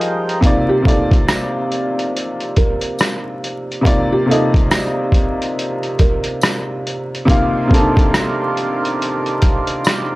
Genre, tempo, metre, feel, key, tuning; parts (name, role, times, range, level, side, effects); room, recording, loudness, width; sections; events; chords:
lo-fi hip hop; 70 BPM; 4/4; swing 60% on 16ths; C dorian; A4 = 440 Hz
clear upright piano; accompaniment; 0.0-10.2 s; C3 to F5; -18 LUFS; equal; cassette tape
mellow accordion; sustained chords; 0.0-0.4, 7.3-10.2 s; Eb3 to G5; -22 LUFS; right 2 dB
trip hop sampler-style drum kit; drums; 0.0-10.1 s; hi-hat, kick drum, rim click; -16 LUFS; equal; vintage 12-bit sampler grit
felt-muted upright piano; melody; 0.7-7.2 s; G4 to Bb4; -22 LUFS; right 2 dB
tambourine; percussion; 1.3-10.1 s; -31 LUFS; right 2 dB
little or no reverb; dry, gritty hardware recording, transformer saturation, vinyl crackle, lossy compression artefacts; -14 LUFS; side -20 dB against mid
0.4-10.2 A section
break 0.0-0.4
0.4 Cm11